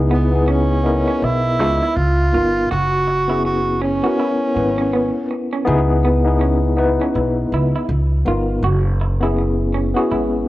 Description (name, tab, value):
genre	R&B, neo-soul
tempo	81 BPM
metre	4/4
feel	swing 60% on 16ths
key	C# dorian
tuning	A4 = 440 Hz
part	mellow tine electric piano	accompaniment	0.0-10.5 s	B3 to D#5	-19 LUFS	left 2 dB	fast tremolo
part	upright bass	bass	0.0-10.4 s	F#1 to C#2	-19 LUFS	equal	none
part	breathy tenor saxophone	melody	0.1-5.3 s	B3 to F#4	-20 LUFS	right 1 dB	none
part	electric guitar through a small old amp	second line	0.1-10.3 s	B3 to F#4	-26 LUFS	right 4 dB	none
room	light reverb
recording	worn, warbling old tape, cassette tape, warbly pitch drift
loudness	-15 LUFS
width	side -16 dB against mid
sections	0.0-10.5 A section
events	none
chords	0.0 C#m9; 2.0 C#13; 2.7 F#7sus4; 5.7 C#m9; 7.9 C#13; 8.6 F#7sus4